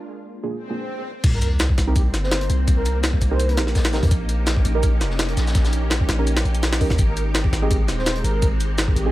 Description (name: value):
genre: drum and bass, jungle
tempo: 167 BPM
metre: 4/4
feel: swing 53% on 16ths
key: C minor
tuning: A4 = 440 Hz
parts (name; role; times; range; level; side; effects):
- soft string machine; sustained chords; 0.0-9.1 s; Ab3 to G4; -30 LUFS; equal; ensemble chorus
- deep mellow chord stab; stabs; 0.4-9.1 s; Bb3 to Bb4; -28 LUFS; right 3 dB; chorus, dub echo
- swell and sub drop; sound effects; 0.7-2.7 s; none; -29 LUFS; equal; none
- long sustained 808-style bass; bass; 1.2-9.1 s; Eb1 to F2; -21 LUFS; equal; none
- jungle sampler-style drum kit; drums; 1.2-9.1 s; crash cymbal, hi-hat, kick drum, snare drum; -20 LUFS; equal; none
- vintage drum kit; drums; 1.2-9.1 s; hi-hat, shaker, snare drum; -34 LUFS; left 2 dB; none
- breathy flute-like synth lead; melody; 1.3-3.6, 7.1-9.1 s; G4 to C5; -31 LUFS; equal; analog chorus, cassette tape, dub echo
room: studio reverb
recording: none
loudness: -18 LUFS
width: side -16 dB against mid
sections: 0.0-1.2 A section; 1.2-9.1 B section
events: filter sweep on string machine 0.0-1.2; swell 0.7-1.2; stop 0.9-1.2; drop 1.2-9.1; impact 1.2-2.7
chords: 0.0 Bb7; 1.2 Cm7; 4.1 Eb7; 7.0 Abmaj7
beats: 0.16 0.52 0.88 | 1.24 1.60 1.96 2.31 | 2.67 3.03 3.39 3.75 | 4.11 4.47 4.83 5.19 | 5.55 5.91 6.27 6.63 | 6.99 7.34 7.70 8.06 | 8.42 8.78